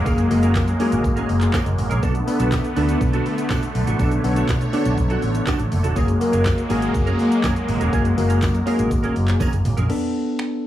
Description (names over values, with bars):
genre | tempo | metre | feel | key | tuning
dance-pop | 122 BPM | 4/4 | straight | B dorian | A4 = 440 Hz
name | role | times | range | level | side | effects
filtered supersaw swell | sustained chords | 0.0-9.9 s | D3 to C#5 | -25 LUFS | right 1 dB | sidechain pumping
clean electric guitar | riff | 0.0-9.9 s | C#4 to A#4 | -28 LUFS | right 6 dB | ensemble chorus
fingered electric bass | bass | 0.0-9.9 s | E1 to B2 | -21 LUFS | equal | sidechain pumping
bell-like tine electric piano | accompaniment | 0.1-10.7 s | A#3 to A#4 | -22 LUFS | left 2 dB | wide subtle chorus, sidechain pumping
smooth R&B drum kit | drums | 0.1-10.5 s | crash cymbal, finger snaps, handclaps, hi-hat, kick drum, shaker, snare drum, toms | -24 LUFS | equal | none
tambourine | percussion | 0.1-9.8 s | none | -47 LUFS | left 9 dB | none
room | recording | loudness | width
little or no reverb | small room ambience | -17 LUFS | side -12 dB against mid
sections
0.0-9.9 A section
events
drum fill 9.4-9.9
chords
0.0 F#add9; 2.0 Bm7; 6.0 F#add9; 9.9 Bm7